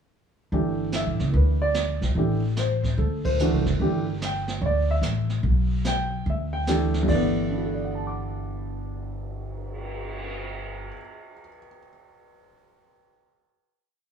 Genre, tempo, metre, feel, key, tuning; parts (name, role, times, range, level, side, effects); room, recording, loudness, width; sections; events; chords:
jazz piano trio; 147 BPM; 4/4; swing 65% on 8ths; G major; A4 = 440 Hz
warm baby grand piano; melody; 0.5-11.9 s; G2 to D6; -26 LUFS; right 1 dB
upright bass; bass; 0.5-10.9 s; F#1 to D2; -26 LUFS; equal
jazz brush drum kit; drums; 0.5-10.3 s; brushed snare drum, crash cymbal, cymbal swell, hi-hat, kick drum, ride cymbal, snare drum; -33 LUFS; right 3 dB
light reverb; band playing live in one room, studio reverb; -23 LUFS; side -7 dB against mid
0.5-7.1 A section; 7.1-10.3 final chord
band accent 3.2
0.5 Gsus2; 2.2 Am7; 3.0 D9; 3.8 G69